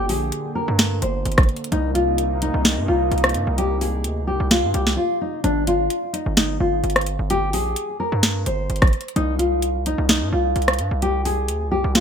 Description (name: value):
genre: hip hop, trap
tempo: 129 BPM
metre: 4/4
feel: half-time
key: unclear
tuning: A4 = 440 Hz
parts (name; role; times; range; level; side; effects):
- nylon-string guitar; melody; 0.0-12.0 s; D4 to C5; -22 LUFS; left 1 dB; digital delay
- dark analog pad; sustained chords; 0.0-5.4 s; C3 to G5; -30 LUFS; right 1 dB; chorus
- distorted 808-style bass; bass; 0.0-12.0 s; G1 to G2; -23 LUFS; equal; distortion
- trap drum kit; drums; 0.1-12.0 s; hi-hat, kick drum, rim click, snare drum; -19 LUFS; equal; none
room: light reverb, digital ambience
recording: bright 1980s-style digital production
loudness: -18 LUFS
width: side -8 dB against mid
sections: 0.0-5.4 A section; 5.4-12.0 A section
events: break 5.0-5.4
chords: 0.0 Gm; 1.7 Cm7; 5.4 N.C.; 9.2 C5